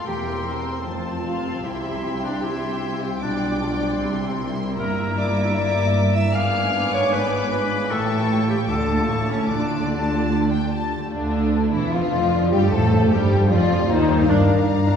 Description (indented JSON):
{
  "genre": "classical",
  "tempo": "153 BPM",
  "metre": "4/4",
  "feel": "straight",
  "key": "D minor from 4.8 s",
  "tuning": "A4 = 441 Hz",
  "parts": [
    { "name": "warm symphonic violin section", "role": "melody", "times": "0.0-15.0 s", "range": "D4 to E#6", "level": "-31 LUFS", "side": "left 4 dB", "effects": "none" },
    { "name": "bright clarinet", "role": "second line", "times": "0.0-10.7 s", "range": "C4 to E#5", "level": "-26 LUFS", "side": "left 1 dB", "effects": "none" },
    { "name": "warm symphonic violin section", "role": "second line", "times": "0.0-15.0 s", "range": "D4 to D6", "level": "-29 LUFS", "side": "left 2 dB", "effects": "none" },
    { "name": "warm symphonic viola section", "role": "accompaniment", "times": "0.0-14.9 s", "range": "D3 to Bb4", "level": "-27 LUFS", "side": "right 2 dB", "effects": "none" },
    { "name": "concert harp", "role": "arpeggios", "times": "0.0-15.0 s", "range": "F2 to D5", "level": "-28 LUFS", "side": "left 3 dB", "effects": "none" },
    { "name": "dark studio double bass section", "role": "bass", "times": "0.0-14.9 s", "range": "E1 to Eb2", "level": "-27 LUFS", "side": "right 2 dB", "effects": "none" },
    { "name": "warm symphonic cello section", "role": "bass", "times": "0.0-14.9 s", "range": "D2 to D3", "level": "-26 LUFS", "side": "right 2 dB", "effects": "none" },
    { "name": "mellow French horn section", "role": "sustained chords", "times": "11.1-15.0 s", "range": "D4 to A4", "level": "-23 LUFS", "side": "left 2 dB", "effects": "none" },
    { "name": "hollow concert flute", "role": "second line", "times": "11.9-15.0 s", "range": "Bb4 to F5", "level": "-27 LUFS", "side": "left 3 dB", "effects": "none" },
    { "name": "timpani", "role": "percussion", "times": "12.7-13.3 s", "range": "F2", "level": "-31 LUFS", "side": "equal", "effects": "none" }
  ],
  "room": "wet concert hall reverb, RT60 2.6 s",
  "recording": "heard from further back in the room, small room reverb",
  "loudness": "-19 LUFS",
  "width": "side -7 dB against mid",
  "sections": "0.0-11.1 A section; 11.1-15.0 B section",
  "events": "none",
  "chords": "0.1 C7/E; 0.9 F; 1.7 C; 3.2 G7/B; 4.0 C; 4.8 Em7b5/G; 6.3 G#dim7; 7.9 A7; 8.7 Dm; 9.1 A; 9.5 Dm; 12.7 F7; 14.3 Gm7"
}